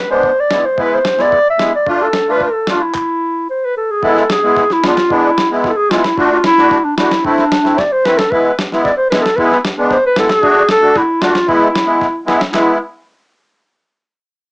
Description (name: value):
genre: klezmer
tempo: 112 BPM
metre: 2/4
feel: straight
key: E phrygian dominant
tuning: A4 = 440 Hz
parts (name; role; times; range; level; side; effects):
- mellow clarinet; melody; 0.0-12.8 s; D4 to E5; -12 LUFS; equal; cassette tape
- musette accordion; accompaniment; 0.1-12.8 s; G#3 to F#4; -15 LUFS; equal; cassette tape
- dusty soul sampler-style drum kit; drums; 0.2-12.7 s; handclaps, kick drum, snare drum; -20 LUFS; equal; none
room: moderate small room reverb, RT60 0.5 s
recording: home recording on cassette, small speaker sound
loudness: -10 LUFS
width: side -39 dB against mid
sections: 0.0-4.0 A section; 4.0-12.5 B section; 12.5-13.6 C section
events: speeding up 0.0-13.6; stop 3.0-4.0; drum fill 7.8-8.3, 12.3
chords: 0.0 E; 1.9 Dm; 3.0 N.C.; 4.0 E; 6.2 D; 7.2 Am; 8.3 E; 10.4 D; 11.5 E